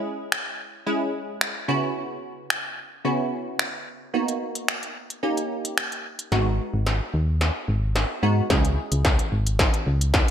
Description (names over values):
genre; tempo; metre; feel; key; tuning
dance-pop; 110 BPM; 4/4; straight; G# minor; A4 = 440 Hz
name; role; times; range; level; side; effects
wavetable chord stab; accompaniment; 0.0-9.3 s; C#3 to G#4; -27 LUFS; right 1 dB; lush chorus, sidechain pumping
industrial drum kit; drums; 0.3-10.3 s; finger snaps, hi-hat, kick drum, snare drum; -24 LUFS; equal; distortion, gated reverb
solid FM bass; bass; 6.3-10.2 s; G#1 to G#2; -22 LUFS; equal; sidechain pumping
room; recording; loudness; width
moderate plate reverb, RT60 2.0 s; bright 1980s-style digital production; -22 LUFS; side -9 dB against mid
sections
0.0-6.3 A section; 6.3-10.3 B section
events
build-up 6.3-10.3; drum fill 6.3-10.3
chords
0.0 C#m; 1.7 F#7sus4/C#; 4.1 Bmaj7; 5.2 D#7; 6.3 G#m7; 8.5 C#m